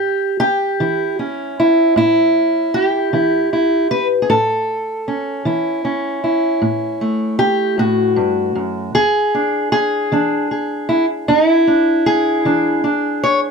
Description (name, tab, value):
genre	acoustic country blues, solo or duo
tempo	52 BPM (dotted quarters)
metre	12/8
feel	straight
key	unclear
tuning	A4 = 440 Hz
part	fingerpicked steel-string acoustic guitar	solo	0.0-13.5 s	E2 to C#5	-14 LUFS	equal	none
room	light reverb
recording	close, detailed microphones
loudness	-14 LUFS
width	side -5 dB against mid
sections	0.0-13.5 A section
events	none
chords	0.0 A7; 8.9 E7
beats	0.79 1.96 3.13 | 4.29 5.46 6.62 7.79 | 8.95 10.11 11.28 12.45